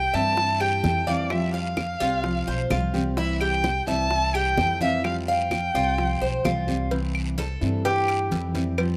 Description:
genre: latin, Cuban son and guajira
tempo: 128 BPM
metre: 4/4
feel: straight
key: C major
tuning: A4 = 440 Hz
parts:
  - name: dark violin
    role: melody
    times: 0.0-6.6 s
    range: D5 to A5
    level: -28 LUFS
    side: equal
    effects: none
  - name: Cuban tres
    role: arpeggios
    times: 0.0-8.3 s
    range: E4 to F5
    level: -30 LUFS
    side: equal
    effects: none
  - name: upright bass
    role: bass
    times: 0.0-9.0 s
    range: B1 to G2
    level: -31 LUFS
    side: equal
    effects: none
  - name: nylon-string guitar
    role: accompaniment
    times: 0.1-9.0 s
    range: C3 to G4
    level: -32 LUFS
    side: equal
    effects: none
  - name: congas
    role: percussion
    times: 0.1-9.0 s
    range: none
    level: -35 LUFS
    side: equal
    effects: none
  - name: guiro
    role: percussion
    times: 0.1-9.0 s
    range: none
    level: -44 LUFS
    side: equal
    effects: none
  - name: bongos and cowbell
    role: percussion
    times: 0.4-9.0 s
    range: none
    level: -33 LUFS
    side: equal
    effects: none
  - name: claves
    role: percussion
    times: 0.6-9.0 s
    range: none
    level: -35 LUFS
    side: equal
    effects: none
room: light reverb, small room ambience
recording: rough home demo mix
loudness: -24 LUFS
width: mono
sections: 0.0-6.9 A section; 6.9-9.0 B section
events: Cuban tres solo 6.9-9.0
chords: 0.0 C; 1.3 Fsus2; 3.2 C; 5.0 Fsus2; 6.9 C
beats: 0.37 0.84 | 1.31 1.77 2.24 2.71 | 3.18 3.65 4.11 4.58 | 5.05 5.51 5.98 6.45 | 6.92 7.39 7.85 8.32 | 8.79

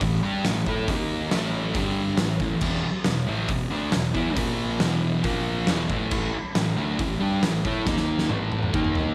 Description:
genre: garage rock duo or trio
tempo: 137 BPM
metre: 4/4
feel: straight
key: unclear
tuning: A4 = 440 Hz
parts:
  - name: thick fuzz guitar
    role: riff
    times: 0.0-9.1 s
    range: E2 to A4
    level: -27 LUFS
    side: equal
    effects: distortion
  - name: overdriven picked electric bass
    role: bass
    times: 0.0-9.1 s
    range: E1 to A2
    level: -34 LUFS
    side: equal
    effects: none
  - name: oversized low-tuned drum kit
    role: drums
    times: 0.0-9.1 s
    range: crash cymbal, hi-hat, kick drum, snare drum, toms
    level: -30 LUFS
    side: equal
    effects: none
room: light reverb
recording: none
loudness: -25 LUFS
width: mono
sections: 0.0-9.1 A section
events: drum fill 7.9-9.1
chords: 0.0 A5; 0.9 D#5; 1.3 A5; 1.8 G5; 2.2 A5; 2.6 E5; 4.4 A#5; 4.8 E5; 5.3 A#5; 5.7 E5; 6.1 A5; 7.9 D#5; 8.3 A5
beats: 0.01 0.44 | 0.88 1.32 1.75 2.19 | 2.63 3.06 3.50 3.94 | 4.38 4.81 5.25 5.69 | 6.13 6.56 7.00 7.44 | 7.87 8.31 8.75

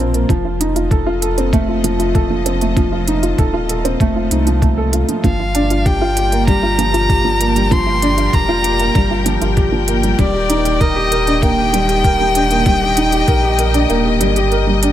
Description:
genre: piano and strings electronica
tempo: 97 BPM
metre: 4/4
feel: straight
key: G minor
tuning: A4 = 440 Hz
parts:
  - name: clear studio string section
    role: sustained chords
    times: 0.0-14.9 s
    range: Eb3 to G5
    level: -25 LUFS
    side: left 6 dB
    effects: sidechain pumping
  - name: dark upright piano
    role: riff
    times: 0.0-14.9 s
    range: F3 to Bb4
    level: -17 LUFS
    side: right 1 dB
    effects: digital delay
  - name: warm sub bass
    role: bass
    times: 0.0-14.9 s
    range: Eb1 to C2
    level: -20 LUFS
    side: equal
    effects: sidechain pumping
  - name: electronic hi-hat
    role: drums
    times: 0.1-14.9 s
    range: none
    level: -23 LUFS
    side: right 4 dB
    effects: overdrive
  - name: electronic kick drum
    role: drums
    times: 0.3-13.4 s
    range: none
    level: -16 LUFS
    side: equal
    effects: none
  - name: warm violin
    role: melody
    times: 5.2-14.5 s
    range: D5 to C6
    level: -18 LUFS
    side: left 1 dB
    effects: digital delay
room: light reverb, small room ambience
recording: none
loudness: -13 LUFS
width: side -12 dB against mid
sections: 0.0-14.9 A section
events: fade-in on string section 0.0-14.9; kick drops out 13.9-14.9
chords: 0.3 F7; 5.2 Gm7; 10.2 Ebmaj7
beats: | 0.29 0.91 1.53 2.15 | 2.77 3.38 4.00 4.62 | 5.24 5.86 6.48 7.09 | 7.71 8.33 8.95 9.57 | 10.19 10.81 11.43 12.04 | 12.66 13.28 13.90 14.52

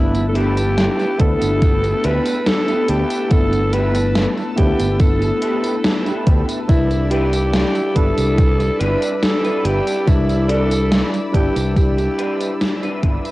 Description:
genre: vaporwave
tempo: 71 BPM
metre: 4/4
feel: straight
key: G major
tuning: A4 = 440 Hz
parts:
  - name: breathy alto saxophone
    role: melody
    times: 0.0-13.0 s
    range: E4 to B4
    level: -21 LUFS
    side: equal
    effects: cassette tape, tape echo
  - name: tine electric piano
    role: accompaniment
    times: 0.0-13.3 s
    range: G3 to B4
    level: -23 LUFS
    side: equal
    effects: overdrive, medium stereo tremolo, analog chorus, cassette tape, tape echo
  - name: lush unison pad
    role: sustained chords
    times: 0.0-13.3 s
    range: B4 to E6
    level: -31 LUFS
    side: equal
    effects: chorus, cassette tape
  - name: fingered electric bass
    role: bass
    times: 0.0-13.2 s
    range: G1 to D2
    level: -19 LUFS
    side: equal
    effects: tube saturation
  - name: gated 80s digital drum machine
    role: drums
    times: 0.1-13.3 s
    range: hi-hat, snare drum, tambourine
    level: -22 LUFS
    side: equal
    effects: gated reverb, gated reverb snare, overdrive, cassette tape
  - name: electric guitar through a small old amp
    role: riff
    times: 0.3-13.3 s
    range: B3 to D5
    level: -26 LUFS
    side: equal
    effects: analog chorus, vintage 12-bit sampler grit, cassette tape, tape echo
  - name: electronic kick drum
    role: drums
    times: 1.2-13.2 s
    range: none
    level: -16 LUFS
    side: equal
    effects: overdrive, cassette tape
room: light reverb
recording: home recording on cassette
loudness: -15 LUFS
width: side -18 dB against mid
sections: 0.0-13.3 A section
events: fade-out 11.2-13.3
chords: 0.0 G69; 6.7 Cmaj9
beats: 0.78 1.62 2.47 | 3.31 4.16 5.00 5.85 | 6.69 7.54 8.38 9.23 | 10.07 10.92 11.76 12.61

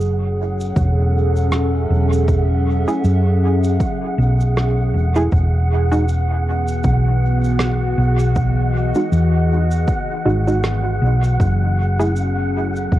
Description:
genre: ambient dub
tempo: 79 BPM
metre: 4/4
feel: swing 58% on 16ths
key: F# dorian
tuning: A4 = 438 Hz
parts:
  - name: warbly tape-like pad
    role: sustained chords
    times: 0.0-13.0 s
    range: E3 to E5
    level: -23 LUFS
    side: equal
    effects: chorus, built-in reverb, phaser, cassette tape
  - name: hollow-body short-scale fingered electric bass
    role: bass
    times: 0.0-13.0 s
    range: E1 to F#2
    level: -16 LUFS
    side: equal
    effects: none
  - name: cabasa and rim click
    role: drums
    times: 0.0-13.0 s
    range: none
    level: -28 LUFS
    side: right 1 dB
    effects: cassette tape, dub echo
  - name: wind-like tuned noise texture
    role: texture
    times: 0.0-13.0 s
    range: F#5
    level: -28 LUFS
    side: right 1 dB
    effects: built-in reverb, cassette tape
  - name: electronic kick drum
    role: drums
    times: 0.8-13.0 s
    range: none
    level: -20 LUFS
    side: equal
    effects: overdrive, cassette tape
  - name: filtered dub chord stab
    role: stabs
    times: 2.9-12.1 s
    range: G#3 to G#4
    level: -23 LUFS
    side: right 2 dB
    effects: chorus, cassette tape, dub echo
room: studio ambience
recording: home recording on cassette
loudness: -15 LUFS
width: side -14 dB against mid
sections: 0.0-13.0 A section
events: none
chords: 0.0 F#m9; 5.3 Emaj9; 11.4 F#m9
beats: 0.01 0.77 1.53 | 2.29 3.04 3.80 4.56 | 5.32 6.08 6.84 7.60 | 8.36 9.12 9.88 10.64 | 11.40 12.16 12.92

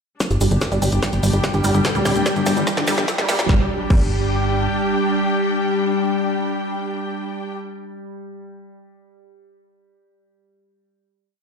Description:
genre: psychedelic trance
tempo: 146 BPM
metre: 4/4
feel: straight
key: unclear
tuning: A4 = 441 Hz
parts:
  - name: overtone-sweeping drone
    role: sustained chords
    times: 0.6-7.6 s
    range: G3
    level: -24 LUFS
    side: left 1 dB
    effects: chorus, built-in reverb, phaser, sidechain pumping
  - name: wide unison pluck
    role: riff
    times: 0.2-4.0 s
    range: G3 to A4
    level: -25 LUFS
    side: right 2 dB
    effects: auto-pan, sidechain pumping, dub echo
  - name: drum and bass drum kit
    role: drums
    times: 0.2-4.0 s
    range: crash cymbal, hi-hat, snare drum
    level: -25 LUFS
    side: equal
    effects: overdrive
  - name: electronic kick drum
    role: drums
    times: 0.2-4.0 s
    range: none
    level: -19 LUFS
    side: equal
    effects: high-pass filter on kick
  - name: cabasa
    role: percussion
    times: 0.2-3.5 s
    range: none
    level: -33 LUFS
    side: left 2 dB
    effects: none
  - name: riser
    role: sound effects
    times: 1.5-3.5 s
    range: none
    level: -31 LUFS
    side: right 2 dB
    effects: none
  - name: bright symphonic string section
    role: texture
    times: 0.2-7.5 s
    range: D4 to G5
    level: -26 LUFS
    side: left 2 dB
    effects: sidechain pumping
  - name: tight sequencer bass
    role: bass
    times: 0.3-4.7 s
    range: D1 to Bb1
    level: -20 LUFS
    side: equal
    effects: none
room: moderate digital room reverb, RT60 1.0 s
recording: played on a big sound system in a bare room, large studio reverb, high-pass filter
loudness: -17 LUFS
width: side -6 dB against mid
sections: 0.2-3.5 build; 3.5-6.8 final chord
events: build-up 0.2-3.5; drum fill 0.2-3.5; filter sweep on synth arpeggio sound 0.2-3.5; filter sweep 0.2-3.5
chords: 0.2 G5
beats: | 0.20 0.61 1.03 1.44 | 1.85 2.26 2.67 3.08 | 3.49 3.90 4.31 4.72 | 5.13 5.55 5.96 6.37

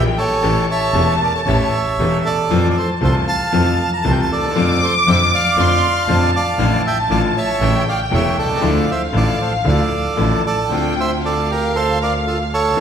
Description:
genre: tango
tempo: 117 BPM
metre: 4/4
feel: rubato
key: D minor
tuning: A4 = 441 Hz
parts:
  - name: bandoneon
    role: melody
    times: 0.0-12.8 s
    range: F4 to Bb5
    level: -20 LUFS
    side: right 3 dB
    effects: none
  - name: dark studio violin section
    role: second line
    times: 0.0-12.8 s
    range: E5 to D6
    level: -21 LUFS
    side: left 1 dB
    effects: none
  - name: bright grand piano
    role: accompaniment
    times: 0.0-12.8 s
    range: E1 to G4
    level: -20 LUFS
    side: left 4 dB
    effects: none
  - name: clear double bass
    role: bass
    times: 0.0-12.8 s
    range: E1 to F2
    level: -20 LUFS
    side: right 1 dB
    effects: none
room: wet recital hall reverb, RT60 1.5 s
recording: recorded in a church or concert hall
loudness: -14 LUFS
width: side -8 dB against mid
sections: 0.0-10.7 A section; 10.7-12.8 A section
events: none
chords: 0.4 A7; 2.5 Fmaj7; 4.6 Dm7/F; 6.6 Dm/A; 7.6 A; 8.6 Dmadd9; 10.7 Dm7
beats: | 0.43 0.94 1.46 1.98 | 2.50 3.02 3.54 4.05 | 4.56 5.07 5.58 6.08 | 6.59 7.09 7.60 8.12 | 8.62 9.13 9.65 10.18 | 10.71 11.23 11.74 12.25 | 12.76

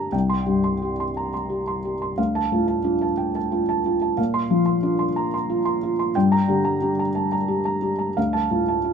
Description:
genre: neoclassical minimalist piano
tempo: 60 BPM (dotted quarters)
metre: 6/8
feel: rubato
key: D minor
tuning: A4 = 438 Hz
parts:
  - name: felt-muted upright piano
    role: solo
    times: 0.0-8.9 s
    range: C2 to C6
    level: -20 LUFS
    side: equal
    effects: none
room: light reverb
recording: minimal, uncompressed stereo recording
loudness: -20 LUFS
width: side -6 dB against mid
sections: 0.0-8.9 A section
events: none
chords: 0.1 C5; 2.2 Dm; 4.2 Bbadd9; 6.2 Gm; 8.2 Dm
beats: | 0.13 1.16 | 2.18 3.18 | 4.18 5.16 | 6.15 7.15 | 8.16

